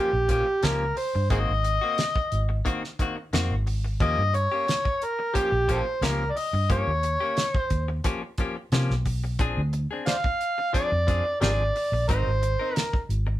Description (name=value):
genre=straight-eighth soul blues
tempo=89 BPM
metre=4/4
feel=straight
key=Eb mixolydian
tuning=A4 = 440 Hz
part: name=overdriven harmonica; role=melody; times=0.0-13.1 s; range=G4 to F5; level=-25 LUFS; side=equal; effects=none
part: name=direct-recorded clean electric guitar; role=stabs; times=0.0-13.3 s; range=Eb3 to Bb4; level=-32 LUFS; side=left 3 dB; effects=none
part: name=vintage muted fingered electric bass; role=bass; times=0.1-13.4 s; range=Ab1 to C3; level=-26 LUFS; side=equal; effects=none
part: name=damped 70s drum kit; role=drums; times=0.3-13.3 s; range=hi-hat, kick drum, snare drum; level=-28 LUFS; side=equal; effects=none
room=moderate studio ambience, RT60 0.5 s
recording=band playing live in one room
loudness=-23 LUFS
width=side -14 dB against mid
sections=0.0-13.4 A section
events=none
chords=0.0 Eb9 (rootless); 1.3 Ab9; 4.0 Eb9; 9.4 Bb9 (rootless); 12.1 Ab9